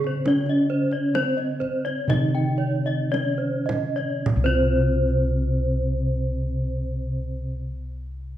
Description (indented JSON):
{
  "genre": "Balinese gamelan",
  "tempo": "51-73 BPM",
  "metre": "4/4",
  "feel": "straight",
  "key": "unclear",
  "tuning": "A4 = 440 Hz",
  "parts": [
    { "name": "gamelan-type bronze metallophone", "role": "melody", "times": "0.0-7.6 s", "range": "C4 to Eb4", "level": "-28 LUFS", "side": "right 1 dB", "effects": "none" },
    { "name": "gamelan-type bronze metallophone", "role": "accompaniment", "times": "0.0-7.6 s", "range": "C3 to Eb3", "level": "-30 LUFS", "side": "right 1 dB", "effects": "none" },
    { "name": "gamelan-type bronze metallophone", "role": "arpeggios", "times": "0.0-7.6 s", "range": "C5 to Eb5", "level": "-30 LUFS", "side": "right 3 dB", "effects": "none" },
    { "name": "gamelan-type bossed gongs", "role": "bass", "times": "0.0-7.5 s", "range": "C2 to Db4+35c", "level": "-25 LUFS", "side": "left 1 dB", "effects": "none" },
    { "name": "kendang", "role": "percussion", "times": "0.0-4.8 s", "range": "none", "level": "-31 LUFS", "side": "right 3 dB", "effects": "none" },
    { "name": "gamelan-type bronze metallophone", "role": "arpeggios", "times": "0.1-7.6 s", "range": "C5 to G5", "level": "-29 LUFS", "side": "left 3 dB", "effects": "none" }
  ],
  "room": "moderate recital hall reverb, RT60 1.8 s",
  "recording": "none",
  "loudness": "-21 LUFS",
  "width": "side -12 dB against mid",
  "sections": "0.0-4.2 A section; 4.2-8.4 B section",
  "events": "slowing down 0.0-4.2",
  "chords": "none",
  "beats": "| 0.27 1.14 2.08 3.11 | 4.24 5.43 6.62"
}